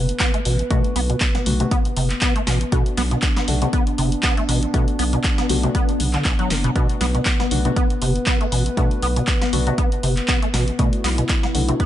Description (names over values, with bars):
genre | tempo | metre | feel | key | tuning
acid house | 119 BPM | 4/4 | swing 55% on 16ths | B phrygian | A4 = 439 Hz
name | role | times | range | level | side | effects
dark analog pad | sustained chords | 0.0-11.9 s | B3 to B4 | -27 LUFS | equal | chorus, sidechain pumping
deep acid bass | riff | 0.0-11.9 s | B1 to B3 | -23 LUFS | equal | overdrive, ensemble chorus, sidechain pumping, digital delay
saturated sub bass | bass | 0.0-11.7 s | F#1 to B1 | -22 LUFS | equal | sidechain pumping
punchy analog drum machine | drums | 0.1-11.9 s | handclaps, hi-hat, snare drum | -25 LUFS | equal | none
electronic kick drum | drums | 0.2-11.9 s | none | -20 LUFS | equal | none
deep mellow chord stab | stabs | 0.7-11.8 s | A3 to F#4 | -28 LUFS | left 4 dB | chorus, phaser, digital delay
room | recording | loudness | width
digital ambience | nothing above 10.9 kHz | -17 LUFS | side -12 dB against mid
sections
0.0-11.9 A section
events
none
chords
0.0 Bm7